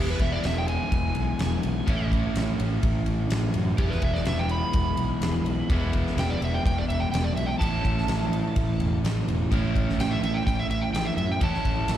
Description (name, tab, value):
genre	blues rock power trio and southern rock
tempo	126 BPM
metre	4/4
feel	straight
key	E major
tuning	A4 = 442 Hz
part	overdriven slide guitar	melody	0.0-12.0 s	G4 to B5	-31 LUFS	right 2 dB	slapback echo
part	overdriven electric guitar	riff	0.0-12.0 s	A2 to E4	-28 LUFS	equal	slapback echo
part	fuzz fingered electric bass	bass	0.0-12.0 s	E1 to F#2	-28 LUFS	equal	overdrive
part	huge arena drum kit	drums	0.2-12.0 s	kick drum, ride cymbal, snare drum	-28 LUFS	equal	none
room	little or no reverb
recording	live gig heard through the venue's PA, recital hall reverb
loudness	-23 LUFS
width	side -11 dB against mid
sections	0.0-12.0 A section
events	electric slide guitar solo 0.0-12.0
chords	0.0 E; 1.9 A; 3.8 E; 7.6 A